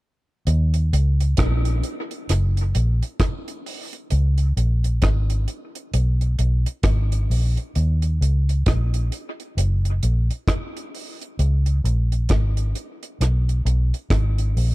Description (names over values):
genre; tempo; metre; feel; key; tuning
dub reggae; 66 BPM; 4/4; swing 61% on 16ths; Eb minor; A4 = 440 Hz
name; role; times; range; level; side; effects
vintage muted fingered electric bass; bass; 0.5-14.7 s; Gb1 to Eb2; -18 LUFS; equal; none
deep reggae drum kit; drums; 0.5-14.7 s; hi-hat, kick drum, rim click; -25 LUFS; equal; none
room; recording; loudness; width
little or no reverb; dark, warm production; -19 LUFS; side -20 dB against mid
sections
0.5-7.7 A section; 7.7-14.7 B section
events
none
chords
none